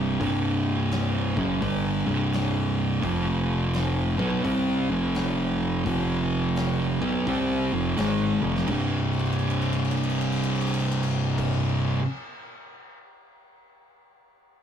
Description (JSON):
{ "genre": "stoner and doom metal", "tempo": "85 BPM", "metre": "4/4", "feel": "swing 64% on 8ths", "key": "unclear", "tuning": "A4 = 440 Hz", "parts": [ { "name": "thick fuzz guitar", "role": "riff", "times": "0.0-12.0 s", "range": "C2 to C4", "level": "-30 LUFS", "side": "left 5 dB", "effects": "distortion" }, { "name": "thick fuzz guitar", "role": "riff", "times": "0.0-12.0 s", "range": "C2 to C4", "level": "-24 LUFS", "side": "right 2 dB", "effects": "distortion" }, { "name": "modern bright fingered electric bass", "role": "bass", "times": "0.0-11.4 s", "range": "C1 to C2", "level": "-34 LUFS", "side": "left 2 dB", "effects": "overdrive" }, { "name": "big rock drum kit", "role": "drums", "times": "0.2-13.0 s", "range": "crash cymbal, hi-hat, kick drum, ride cymbal, snare drum, toms", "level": "-36 LUFS", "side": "left 2 dB", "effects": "none" } ], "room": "moderate booth ambience, RT60 0.2 s", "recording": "rough rehearsal-room recording, warm saturation", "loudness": "-23 LUFS", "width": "side -8 dB against mid", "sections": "0.0-8.7 A section; 8.7-11.5 B section", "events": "drum fill 8.3-8.7, 9.0-11.3", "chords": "0.0 C5; 3.0 F5; 8.7 C5" }